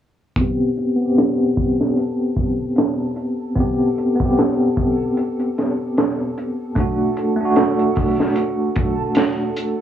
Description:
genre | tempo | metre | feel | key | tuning
trip hop | 75 BPM | 4/4 | swing 57% on 16ths | A dorian | A4 = 440 Hz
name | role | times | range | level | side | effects
bell-like tine electric piano | accompaniment | 0.4-9.8 s | A3 to G4 | -19 LUFS | equal | tremolo, low-pass filter, tape echo
crunchy breakbeat drum kit | drums | 0.4-9.8 s | hi-hat, kick drum, snare drum | -20 LUFS | equal | none
backwards swelling texture | texture | 1.9-9.8 s | A4 | -30 LUFS | right 2 dB | built-in reverb
room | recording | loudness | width
light reverb, small room reverb | dry, gritty hardware recording, cassette tape, low-pass filter | -17 LUFS | side -10 dB against mid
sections
0.4-9.8 A section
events
filter sweep on tine electric piano 0.4-9.8; filter sweep 0.4-9.8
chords
0.4 Am7; 6.8 D/A

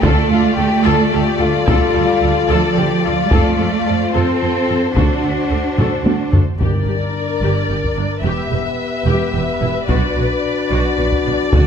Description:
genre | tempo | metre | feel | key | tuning
cinematic, epic orchestral film score | 73 BPM (dotted quarters) | 6/8 | straight | unclear | A4 = 440 Hz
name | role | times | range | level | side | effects
warm symphonic violin section | melody | 0.0-11.7 s | C5 to E5 | -24 LUFS | left 4 dB | none
dark symphonic violin section | second line | 0.0-11.7 s | F4 to B4 | -23 LUFS | left 5 dB | none
rich symphonic viola section | accompaniment | 0.0-11.7 s | D4 to A4 | -24 LUFS | equal | none
mellow French horn section | sustained chords | 0.0-11.7 s | B3 to C5 | -23 LUFS | left 5 dB | none
dark symphonic double bass section | bass | 0.0-11.6 s | E1 to F2 | -21 LUFS | right 4 dB | none
warm symphonic cello section | bass | 0.0-11.6 s | E2 to D4 | -20 LUFS | right 4 dB | none
solo taiko drums | drums | 0.0-11.7 s | none | -17 LUFS | equal | none
timpani | percussion | 6.6-7.4, 11.5-11.7 s | G2 to D3 | -23 LUFS | left 2 dB | none
room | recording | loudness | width
moderate scoring stage reverb, RT60 1.6 s | dark, warm production | -14 LUFS | side -7 dB against mid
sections
0.0-6.6 A section; 6.6-11.7 B section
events
drum fill 5.8-6.6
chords
0.0 Dm; 3.3 F; 5.0 D7; 6.6 Gm; 8.2 Em; 9.9 Bm

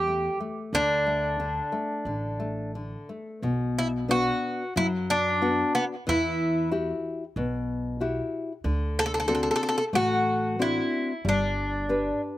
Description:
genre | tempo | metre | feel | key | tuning
fado-style ballad | 91 BPM | 4/4 | rubato | B minor from 3.4 s | A4 = 438 Hz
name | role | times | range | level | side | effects
Irish bouzouki | melody | 0.0-12.2 s | B3 to A4 | -25 LUFS | equal | slapback echo
nylon-string guitar | accompaniment | 0.0-12.4 s | B2 to B4 | -30 LUFS | left 3 dB | none
upright bass | bass | 0.0-12.1 s | G1 to F#2 | -32 LUFS | right 1 dB | none
room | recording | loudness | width
little or no reverb | recorded outdoors, with no room sound | -24 LUFS | side -15 dB against mid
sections
0.0-3.4 A section; 3.4-12.4 B section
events
none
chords
0.0 A7(no3); 0.7 D5; 3.4 Bm; 6.1 Emadd9; 8.6 D7; 11.2 G

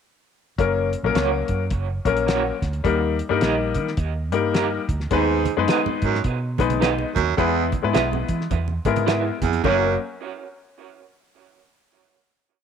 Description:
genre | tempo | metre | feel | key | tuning
uptempo 1960s-style soul | 106 BPM | 4/4 | swing 60% on 8ths | F# mixolydian | A4 = 442 Hz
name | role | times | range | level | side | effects
clear baby grand piano | accompaniment | 0.6-10.0 s | F#3 to B4 | -23 LUFS | left 8 dB | none
vintage muted fingered electric bass | bass | 0.6-10.0 s | F#1 to E3 | -26 LUFS | right 2 dB | none
cloth-damped thuddy drum kit | drums | 0.6-9.8 s | crash cymbal, hi-hat, kick drum, snare drum | -26 LUFS | left 1 dB | none
electric guitar through a small old amp | stabs | 1.1-9.8 s | A#3 to E5 | -27 LUFS | right 10 dB | tremolo, tape echo
raspy baritone saxophone | riff | 5.1-10.0 s | E2 to G#2 | -24 LUFS | right 12 dB | none
congas | percussion | 5.1-10.0 s | none | -31 LUFS | right 10 dB | none
room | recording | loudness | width
moderate spring reverb, RT60 1.6 s, small room ambience | 1960s-style stereo with parts hard left and right | -19 LUFS | side -7 dB against mid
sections
0.6-9.6 verse; 9.6-11.9 final chord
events
none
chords
0.6 F#; 2.8 D#; 5.1 G#m/D#; 7.4 E; 9.6 F#

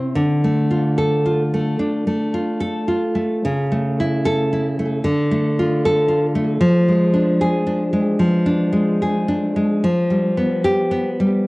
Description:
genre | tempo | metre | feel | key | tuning
romantic piece for solo classical guitar | 74 BPM | 4/4 | rubato | unclear | A4 = 440 Hz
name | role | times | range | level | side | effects
nylon-string guitar | solo | 0.0-11.5 s | C3 to A4 | -16 LUFS | equal | cassette tape, analog delay
room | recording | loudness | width
moderate studio reverb, RT60 0.5 s | home recording on cassette | -16 LUFS | side -22 dB against mid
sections
0.0-11.5 A section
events
none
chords
0.2 Dm; 3.4 A/C#; 5.0 Dm; 6.6 Ddim/F; 9.8 G7/F

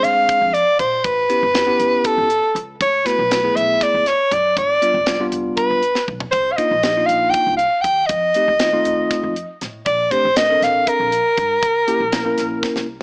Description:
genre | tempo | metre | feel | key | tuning
electric jazz fusion | 238 BPM (eighths) | 7/8 | straight | unclear | A4 = 440 Hz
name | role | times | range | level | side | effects
breathy soprano saxophone | melody | 0.0-12.9 s | A4 to G5 | -15 LUFS | equal | none
bell-like tine electric piano | accompaniment | 0.0-12.9 s | G3 to Bb4 | -23 LUFS | left 1 dB | none
upright bass | bass | 0.0-12.9 s | F1 to Bb2 | -33 LUFS | equal | none
tight funk drum kit | drums | 0.0-12.9 s | hi-hat, kick drum, snare drum, toms | -23 LUFS | equal | none
room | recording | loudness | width
moderate studio reverb, RT60 0.9 s | small speaker sound | -15 LUFS | side -32 dB against mid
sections
0.0-13.0 A section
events
drum fill 6.0-6.3, 12.6-13.0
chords
0.0 Fm6; 1.0 A9; 2.8 D69; 4.6 G7; 6.3 Cm11; 8.1 F7; 9.9 Bbmaj13; 11.6 C7b9

